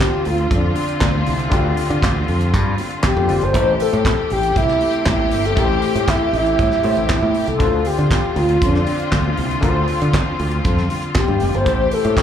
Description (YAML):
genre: disco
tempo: 118 BPM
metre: 4/4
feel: straight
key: D minor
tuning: A4 = 440 Hz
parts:
  - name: mellow alto flute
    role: melody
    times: 0.0-12.2 s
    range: D4 to C5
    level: -19 LUFS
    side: equal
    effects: slapback echo
  - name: overdriven clav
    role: accompaniment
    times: 0.0-12.2 s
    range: D3 to C5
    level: -26 LUFS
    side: left 5 dB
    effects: slapback echo
  - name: clear studio string section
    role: sustained chords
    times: 0.0-12.2 s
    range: C3 to G4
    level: -24 LUFS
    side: left 2 dB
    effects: none
  - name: damped 70s drum kit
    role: drums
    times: 0.0-12.2 s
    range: handclaps, hi-hat, kick drum, snare drum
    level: -21 LUFS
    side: right 1 dB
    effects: none
  - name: congas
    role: percussion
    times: 0.0-12.2 s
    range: none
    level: -31 LUFS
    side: left 8 dB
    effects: none
  - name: modern bright fingered electric bass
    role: bass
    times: 0.3-12.1 s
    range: F1 to D3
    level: -20 LUFS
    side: right 1 dB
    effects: none
room: light reverb, small room reverb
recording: live gig heard through the venue's PA, club reverb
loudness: -15 LUFS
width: side -9 dB against mid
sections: 0.0-12.2 A section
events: none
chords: 0.0 Dm7; 3.5 Am7; 7.6 Dm7; 11.7 Am7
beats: 0.50 1.01 | 1.52 2.02 2.53 3.04 | 3.55 4.05 4.56 5.07 | 5.57 6.08 6.59 7.09 | 7.60 8.11 8.61 9.12 | 9.63 10.13 10.64 11.15 | 11.66 12.16